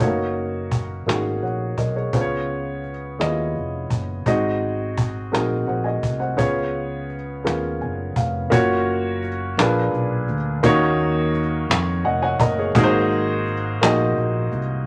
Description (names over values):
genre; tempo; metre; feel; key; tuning
slow gospel; 56 BPM (dotted quarters); 6/8; straight; F# major; A4 = 440 Hz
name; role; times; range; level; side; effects
warm upright piano; accompaniment; 0.0-14.9 s; G#2 to A#5; -24 LUFS; equal; none
fingered electric bass; bass; 0.0-14.8 s; E#1 to E#2; -29 LUFS; equal; none
cajon; drums; 0.0-14.6 s; none; -24 LUFS; equal; none
room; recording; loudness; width
moderate studio reverb, RT60 0.7 s; none; -22 LUFS; mono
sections
0.0-8.5 A section; 8.5-14.9 B section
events
upright piano fill 7.5-8.5, 11.7-12.8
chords
0.0 F#6; 2.1 C#7; 4.3 G#7; 6.4 C#7; 8.5 F#maj7; 9.6 A#7b9; 10.6 D#m7; 12.8 G#9